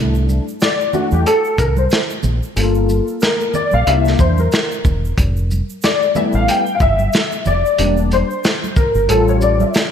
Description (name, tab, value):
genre	hip hop, jazz-hop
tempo	92 BPM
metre	4/4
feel	swing 58% on 16ths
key	C mixolydian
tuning	A4 = 439 Hz
part	dark concert grand piano	accompaniment	0.0-9.9 s	G3 to G5	-17 LUFS	left 2 dB	ensemble chorus
part	deep dub fingered electric bass	bass	0.0-9.6 s	E1 to E2	-17 LUFS	equal	none
part	egg shaker and congas	percussion	0.1-9.9 s	none	-28 LUFS	right 7 dB	none
part	crunchy breakbeat drum kit	drums	0.3-9.9 s	hi-hat, kick drum, shaker, snare drum	-19 LUFS	equal	none
room	moderate lush hall reverb, RT60 1.6 s, studio reverb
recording	dreamy mix soaked in reverb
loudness	-13 LUFS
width	side -8 dB against mid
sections	0.0-9.9 A section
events	grand piano solo 0.0-9.9; kick muted 9.1-9.9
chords	0.0 C6; 2.6 Gm7; 3.9 C7; 5.2 Fmaj9#11; 7.8 Em7b5; 9.1 A7b13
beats	0.61 1.26 1.92 | 2.57 3.22 3.87 4.52 | 5.18 5.83 6.48 7.13 | 7.78 8.44 9.09 9.74